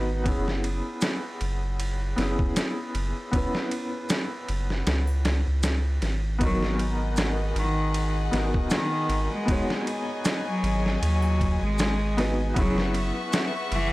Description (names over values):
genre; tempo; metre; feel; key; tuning
trip hop; 78 BPM; 4/4; swing 56% on 16ths; unclear; A4 = 440 Hz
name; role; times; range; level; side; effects
felt-muted upright piano; accompaniment; 0.0-13.9 s; B3 to C#5; -31 LUFS; equal; tremolo, tape echo
soft dub sub bass; bass; 0.0-13.9 s; F#1 to D#2; -26 LUFS; equal; none
trip hop sampler-style drum kit; drums; 0.3-13.9 s; kick drum, ride cymbal, snare drum; -29 LUFS; equal; none
maracas and triangle; percussion; 1.0-13.5 s; none; -39 LUFS; equal; none
rich cello; melody; 6.4-13.9 s; D#3 to G#3; -29 LUFS; left 1 dB; tape echo
warm chamber violin section; sustained chords; 6.4-13.9 s; G#4 to C#6; -33 LUFS; left 2 dB; none
room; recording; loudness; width
little or no reverb; dry, gritty hardware recording, transformer saturation; -23 LUFS; side -19 dB against mid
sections
0.0-13.9 A section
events
none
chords
0.3 F#7sus4; 6.4 G#m7; 12.6 F#7sus4